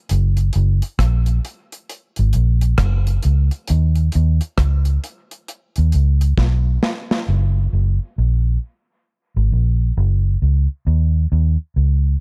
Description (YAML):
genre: dub reggae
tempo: 67 BPM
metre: 4/4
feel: swing 63% on 16ths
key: F# major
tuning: A4 = 442 Hz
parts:
  - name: vintage muted fingered electric bass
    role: bass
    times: 0.1-12.1 s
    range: F#1 to D#2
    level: -17 LUFS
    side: equal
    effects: none
  - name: deep reggae drum kit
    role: drums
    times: 0.1-7.3 s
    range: hi-hat, kick drum, rim click, snare drum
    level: -25 LUFS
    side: equal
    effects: none
room: little or no reverb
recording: none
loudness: -18 LUFS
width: mono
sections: 0.0-7.3 A section; 7.3-12.2 B section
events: drum fill 6.4-7.3; part muted 7.3-12.2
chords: none